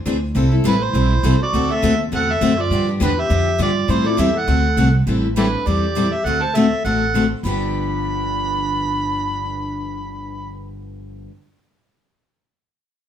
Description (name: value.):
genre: acoustic string swing (jazz manouche).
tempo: 203 BPM.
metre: 4/4.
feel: swing 57% on 8ths.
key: G mixolydian.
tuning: A4 = 440 Hz.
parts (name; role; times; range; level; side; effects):
upright bass; bass; 0.0-11.3 s; G1 to A2; -21 LUFS; equal; none.
picked steel-string acoustic guitar; accompaniment; 0.1-11.3 s; G2 to A4; -22 LUFS; left 3 dB; none.
picked steel-string acoustic guitar; accompaniment; 0.1-11.3 s; G2 to B#4; -28 LUFS; right 3 dB; none.
overdriven harmonica; melody; 0.7-10.6 s; E4 to B5; -22 LUFS; right 2 dB; none.
breathy clarinet; second line; 0.7-10.6 s; D4 to C5; -27 LUFS; right 2 dB; none.
room: moderate studio reverb, RT60 0.7 s.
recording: heard from further back in the room.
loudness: -16 LUFS.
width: side -9 dB against mid.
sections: 0.0-5.1 A section; 5.1-7.4 B section; 7.4-9.8 C section.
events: none.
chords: 0.4 Am7; 1.5 D7; 2.7 G7; 3.9 Am7; 4.5 D7; 5.1 Am11; 6.2 D9; 7.4 G7.